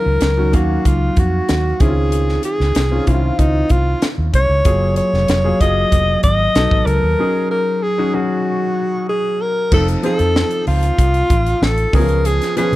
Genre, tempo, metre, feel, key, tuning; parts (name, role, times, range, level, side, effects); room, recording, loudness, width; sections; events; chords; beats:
polished 1980s jazz-funk pop; 95 BPM; 4/4; straight; Db major; A4 = 440 Hz
warm alto saxophone; melody; 0.0-12.8 s; Eb4 to Eb5; -18 LUFS; equal
warm concert grand piano; accompaniment; 0.0-12.8 s; Eb3 to F5; -21 LUFS; left 1 dB; lush chorus
vintage muted fingered electric bass; bass; 0.1-12.8 s; F1 to Db3; -17 LUFS; equal
crisp fusion drum kit; drums; 0.2-12.8 s; crash cymbal, hi-hat, kick drum, snare drum; -18 LUFS; equal
little or no reverb; -13 LUFS; side -16 dB against mid
0.0-9.7 A section; 9.7-12.8 B section
break 7.2-9.7
0.0 Ebm9; 1.8 Dbmaj9; 4.7 Gbmaj9; 6.6 Cb7; 7.2 Ab7sus4; 9.7 F7; 11.9 Db7
0.22 0.85 1.49 | 2.12 2.76 3.39 4.02 | 4.66 5.29 5.92 6.56 | 7.19 7.82 8.46 9.09 | 9.72 10.35 10.99 11.62 | 12.25